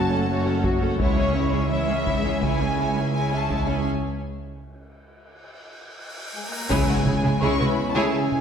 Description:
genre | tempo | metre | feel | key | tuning
cinematic, hybrid orchestral and electronic film score | 84 BPM | 4/4 | straight | C# minor | A4 = 440 Hz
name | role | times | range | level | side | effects
warm symphonic violin section | melody | 0.0-8.4 s | C#5 to C#6 | -29 LUFS | left 1 dB | none
warm symphonic violin section | second line | 0.0-8.1 s | E4 to F#5 | -30 LUFS | left 3 dB | none
rich studio viola section | accompaniment | 0.0-8.1 s | F#3 to F#4 | -29 LUFS | left 1 dB | none
chorused pulse-width pad | sustained chords | 0.0-8.4 s | G#3 to C#5 | -31 LUFS | left 1 dB | none
glassy wavetable pluck | arpeggios | 0.0-8.1 s | C#3 to F#4 | -32 LUFS | right 1 dB | none
clear symphonic double bass section | bass | 0.0-7.5 s | F#1 to C#2 | -29 LUFS | right 3 dB | none
rich symphonic cello section | bass | 0.0-8.0 s | C#2 to C#3 | -28 LUFS | right 2 dB | none
taiko ensemble | drums | 0.6-8.4 s | none | -28 LUFS | equal | none
cymbal swell and impact | sound effects | 5.4-8.4 s | none | -32 LUFS | equal | none
dark French horn section | sustained chords | 6.3-8.4 s | G#3 to C#4 | -30 LUFS | left 2 dB | none
clear trombone section | sustained chords | 6.7-8.4 s | E3 to C#4 | -29 LUFS | equal | none
mellow tuba | bass | 6.7-7.5 s | C#2 | -31 LUFS | right 2 dB | none
room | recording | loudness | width
wet scoring stage reverb, RT60 1.6 s | heard from further back in the room | -20 LUFS | side -7 dB against mid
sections
0.0-6.7 A section; 6.7-8.4 B section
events
break 3.9-6.7; cymbal swell 5.4-6.7; drum fill 6.0-6.7; impact 6.7-8.4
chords
0.0 F#m; 1.0 C#m; 3.9 N.C.; 6.7 C#m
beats
0.28 | 0.99 1.71 2.42 3.14 | 3.85 4.57 5.28 6.00 | 6.71 7.42 8.14

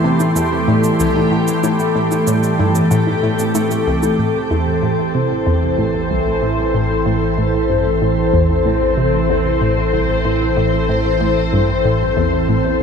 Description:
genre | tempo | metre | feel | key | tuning
ambient, sequencer-driven space music | 94 BPM | 4/4 | straight | A minor | A4 = 440 Hz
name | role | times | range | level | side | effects
sweeping resonant pad | sustained chords | 0.0-12.8 s | E3 to C6 | -17 LUFS | equal | chorus
concert harp | arpeggios | 0.0-7.4 s | E3 to E4 | -22 LUFS | left 1 dB | auto-pan, tape echo
analog pluck | riff | 0.0-12.8 s | C2 to C3 | -20 LUFS | left 1 dB | chorus, phaser, tape echo
bubbling stepped-filter texture | texture | 0.0-12.8 s | C4 to G5 | -23 LUFS | equal | chorus, built-in reverb
congas and cabasa | percussion | 0.2-4.2 s | none | -28 LUFS | right 3 dB | tape echo
round analog bass | bass | 4.2-12.8 s | A1 | -24 LUFS | equal | none
room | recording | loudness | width
moderate shimmer reverb, RT60 7.9 s | none | -14 LUFS | side -6 dB against mid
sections
0.0-4.2 A section; 4.2-12.8 B section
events
none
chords
0.0 Am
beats
0.36 1.00 | 1.64 2.27 2.91 3.55 | 4.19 4.83 5.46 6.10 | 6.74 7.38 8.02 8.66 | 9.29 9.93 10.57 11.21 | 11.85 12.49

